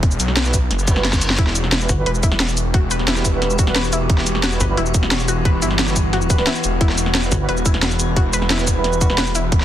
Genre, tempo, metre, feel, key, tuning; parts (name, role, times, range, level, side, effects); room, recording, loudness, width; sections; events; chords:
dark technical drum and bass; 177 BPM; 4/4; straight; E minor; A4 = 440 Hz
wide detuned saw bass; bass; 0.0-9.6 s; E1 to B1; -21 LUFS; equal; chorus, overdrive, sidechain pumping
drum and bass drum kit; drums; 0.0-9.6 s; cabasa, hi-hat, snare drum; -20 LUFS; equal; small room ambience
electronic kick drum; drums; 0.0-9.6 s; -17 LUFS; equal; overdrive, small room ambience
mellow brass ensemble; stabs; 0.5-9.2 s; G3 to B4; -27 LUFS; right 4 dB; dub echo
reverse cymbal; sound effects; 0.8-1.4 s; -29 LUFS; left 1 dB
metallic inharmonic drone; sustained chords; 2.1-9.6 s; E3 to B4; -25 LUFS; left 1 dB; chorus, built-in reverb, sidechain pumping
wide unison pluck; arpeggios; 1.4-9.4 s; E4 to B4; -27 LUFS; left 3 dB; sidechain pumping, dub echo
pulsing pluck wobble bass; bass; 1.9-2.0, 4.6-4.8, 7.3-7.5 s; G1; -20 LUFS; equal; chorus
digital ambience; dense, heavily limited modern master; -15 LUFS; side -11 dB against mid
0.0-9.6 A section
reverse cymbal 0.8-1.4; drum fill 1.0-1.4
0.0 Emadd9